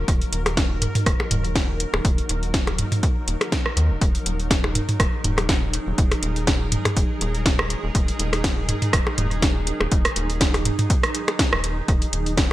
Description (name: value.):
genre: minimal techno.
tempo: 122 BPM.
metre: 4/4.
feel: swing 55% on 16ths.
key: Eb minor.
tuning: A4 = 436 Hz.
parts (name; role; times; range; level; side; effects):
rubbery square bass; bass; 0.0-12.5 s; Eb1 to Eb2; -25 LUFS; equal; sidechain pumping.
granular cloud pad; texture; 0.0-12.5 s; Eb4 to Bb4; -31 LUFS; right 2 dB; built-in reverb, sidechain pumping.
swarming drone; texture; 0.0-12.5 s; Gb3 to Bb4; -37 LUFS; left 2 dB; built-in reverb, sidechain pumping.
electronic kick drum; drums; 0.1-12.5 s; none; -22 LUFS; equal; none.
techno drum kit; drums; 0.1-12.5 s; hi-hat, snare drum; -25 LUFS; equal; gated reverb.
minimal click drum kit; percussion; 0.5-11.6 s; percussion blips, rim click, toms; -24 LUFS; right 1 dB; overdrive, gated reverb, digital delay.
room: digital ambience.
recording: bright 1980s-style digital production.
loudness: -19 LUFS.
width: side -15 dB against mid.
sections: 0.0-12.5 A section.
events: none.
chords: 0.0 Ebm.